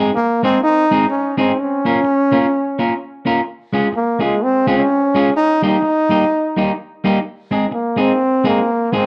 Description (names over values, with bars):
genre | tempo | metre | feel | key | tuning
ska | 127 BPM | 4/4 | swing 58% on 8ths | unclear | A4 = 440 Hz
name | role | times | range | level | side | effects
semi-hollow electric guitar | accompaniment | 0.0-9.1 s | G3 to Bb4 | -19 LUFS | equal | none
clear trombone | melody | 0.2-9.1 s | Ab3 to Eb4 | -18 LUFS | equal | tape echo
room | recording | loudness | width
light reverb | dark, warm production | -16 LUFS | mono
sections
0.0-9.1 A section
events
none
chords
0.0 Ab; 1.6 Bbm; 3.5 Db; 5.4 Eb; 7.2 Ab